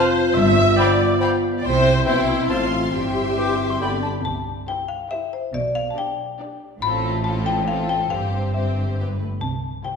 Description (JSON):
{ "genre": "cinematic, playful, whimsical film cue", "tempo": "139 BPM", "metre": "3/4", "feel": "straight", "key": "C major", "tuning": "A4 = 440 Hz", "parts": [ { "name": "warm studio violin section", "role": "melody", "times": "0.0-10.0 s", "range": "A4 to C6", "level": "-33 LUFS", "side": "left 3 dB", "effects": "none" }, { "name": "warm clarinet", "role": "second line", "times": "0.0-4.0 s", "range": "G5 to A5", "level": "-31 LUFS", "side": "left 2 dB", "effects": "none" }, { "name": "warm studio violin section", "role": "second line", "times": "0.0-10.0 s", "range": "F4 to C6", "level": "-31 LUFS", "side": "left 3 dB", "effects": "none" }, { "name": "mellow bassoon", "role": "accompaniment", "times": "0.0-4.0 s", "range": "D3 to F3", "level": "-30 LUFS", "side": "left 1 dB", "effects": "none" }, { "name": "warm studio viola section", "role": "accompaniment", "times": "0.0-10.0 s", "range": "A3 to E5", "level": "-24 LUFS", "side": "right 1 dB", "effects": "none" }, { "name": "mellow French horn section", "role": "sustained chords", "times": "0.0-4.0 s", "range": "B3 to F4", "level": "-22 LUFS", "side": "left 2 dB", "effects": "none" }, { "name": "rich studio cello section", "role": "bass", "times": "0.4-9.8 s", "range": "G2 to C3", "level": "-29 LUFS", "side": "right 1 dB", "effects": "none" }, { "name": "rich studio double bass section", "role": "bass", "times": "0.4-9.8 s", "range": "G1 to C2", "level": "-26 LUFS", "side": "right 2 dB", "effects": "none" }, { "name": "bright silver concert flute", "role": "second line", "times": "0.8-4.1 s", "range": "A5 to D6", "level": "-30 LUFS", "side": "left 3 dB", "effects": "none" }, { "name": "xylophone with plastic mallets", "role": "melody", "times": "4.2-10.0 s", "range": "C5 to B5", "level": "-25 LUFS", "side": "left 5 dB", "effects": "none" } ], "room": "wet scoring stage reverb, RT60 1.6 s", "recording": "heard from further back in the room", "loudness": "-18 LUFS", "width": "side -5 dB against mid", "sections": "0.0-4.2 A section; 4.2-10.0 B section", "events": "none", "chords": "0.4 G7; 1.6 C; 2.5 F/A; 2.9 C/G; 3.8 G; 4.2 C; 5.5 G/B; 6.8 F/A; 8.1 C/G; 9.0 G; 9.4 C" }